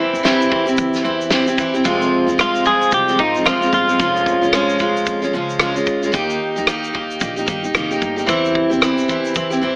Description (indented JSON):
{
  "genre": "acoustic pop",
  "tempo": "112 BPM",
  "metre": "4/4",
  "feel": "swing 60% on 16ths",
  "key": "F minor",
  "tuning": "A4 = 440 Hz",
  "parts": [
    { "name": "direct-recorded clean electric guitar", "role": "melody", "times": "0.0-4.8 s", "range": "Eb4 to Ab4", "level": "-17 LUFS", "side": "equal", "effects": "none" },
    { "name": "picked steel-string acoustic guitar", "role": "accompaniment", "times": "0.0-9.8 s", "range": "F2 to G4", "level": "-17 LUFS", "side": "equal", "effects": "none" },
    { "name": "upright bass", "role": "bass", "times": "0.0-9.8 s", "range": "F1 to E3", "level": "-29 LUFS", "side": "equal", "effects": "none" },
    { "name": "natural country drum kit", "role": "drums", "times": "0.1-9.6 s", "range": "kick drum, rim click, shaker, snare drum", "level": "-21 LUFS", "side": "equal", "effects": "none" },
    { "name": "tube shaker", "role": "percussion", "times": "0.1-9.8 s", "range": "none", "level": "-45 LUFS", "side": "equal", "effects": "none" }
  ],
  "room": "moderate plate reverb, RT60 2.0 s",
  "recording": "AM radio sound",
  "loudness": "-14 LUFS",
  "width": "side -30 dB against mid",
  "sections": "0.0-1.9 A section; 1.9-9.8 B section",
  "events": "none",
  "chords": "0.0 C/E; 1.9 Fm; 4.0 Db/F; 6.1 Eb; 8.3 C/E"
}